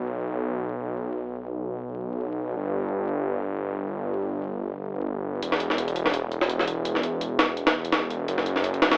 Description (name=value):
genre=drum and bass, jungle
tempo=168 BPM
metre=4/4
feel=swing 55% on 16ths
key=unclear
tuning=A4 = 440 Hz
part: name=detuned saw bass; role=bass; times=0.0-9.0 s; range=E1 to B1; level=-27 LUFS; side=equal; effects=none
part: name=jungle sampler-style drum kit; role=drums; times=5.4-9.0 s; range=hi-hat, snare drum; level=-23 LUFS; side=equal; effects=none
room=little or no reverb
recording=vinyl crackle, telephone sound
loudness=-25 LUFS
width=side -28 dB against mid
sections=0.0-9.0 A section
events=none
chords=none